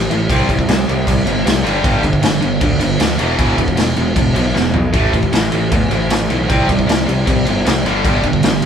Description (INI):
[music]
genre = punk rock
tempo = 155 BPM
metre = 4/4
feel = straight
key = unclear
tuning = A4 = 440 Hz
[part]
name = tight distorted guitar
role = riff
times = 0.0-8.7 s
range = E2 to C4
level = -17 LUFS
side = right 1 dB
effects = distortion
[part]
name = fuzz picked electric bass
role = bass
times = 0.0-8.7 s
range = E1 to E2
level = -18 LUFS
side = equal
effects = overdrive
[part]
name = raw garage drum kit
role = drums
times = 0.1-8.7 s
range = crash cymbal, kick drum, snare drum, toms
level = -16 LUFS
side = equal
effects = none
[sound]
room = light reverb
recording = band playing live in one room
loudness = -13 LUFS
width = side -8 dB against mid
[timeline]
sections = 0.0-8.7 A section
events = drum fill 4.6-4.9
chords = 0.3 C5; 1.6 G5; 3.2 E5; 4.9 A5; 6.5 C5; 7.9 G5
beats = | 0.29 0.68 1.07 1.46 | 1.84 2.23 2.62 3.01 | 3.39 3.78 4.17 4.56 | 4.95 5.33 5.72 6.11 | 6.50 6.89 7.28 7.66 | 8.05 8.44